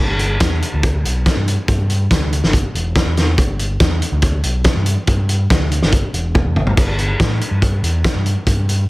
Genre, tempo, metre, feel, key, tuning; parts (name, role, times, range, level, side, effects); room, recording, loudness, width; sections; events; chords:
indie rock; 142 BPM; 4/4; straight; G major; A4 = 440 Hz
overdriven fingered electric bass; bass; 0.0-8.8 s; E1 to A2; -18 LUFS; equal
loose indie drum kit; drums; 0.2-8.8 s; crash cymbal, hi-hat, kick drum, snare drum, toms; -16 LUFS; equal
little or no reverb; dense, heavily limited modern master; -14 LUFS; side -21 dB against mid
0.0-8.9 A section
drum fill 6.3-6.8